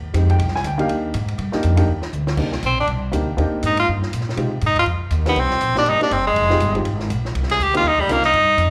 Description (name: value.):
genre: jazz, small-group swing and bop.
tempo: 241 BPM.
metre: 4/4.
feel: swing 59% on 8ths.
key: C minor.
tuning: A4 = 440 Hz.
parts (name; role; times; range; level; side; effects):
upright bass; bass; 0.0-8.7 s; F1 to C3; -23 LUFS; equal; none.
dark baby grand piano; accompaniment; 0.1-8.2 s; Ab3 to Ab5; -26 LUFS; equal; plate reverb.
compact cocktail drum kit; drums; 0.1-8.7 s; crash cymbal, hi-hat, kick drum, ride cymbal, snare drum; -34 LUFS; equal; none.
edgy tenor saxophone; melody; 2.7-8.7 s; G3 to Ab4; -20 LUFS; equal; plate reverb.
room: light reverb.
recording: live gig heard through the venue's PA, club reverb.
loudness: -19 LUFS.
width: mono.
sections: 0.0-2.4 A section; 2.4-8.7 A section.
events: drum fill 2.1; tenor saxophone solo 2.4-8.7.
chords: 0.4 Cm7; 4.4 Fm7; 5.4 Cm7; 6.4 Fm7; 7.3 Cm7.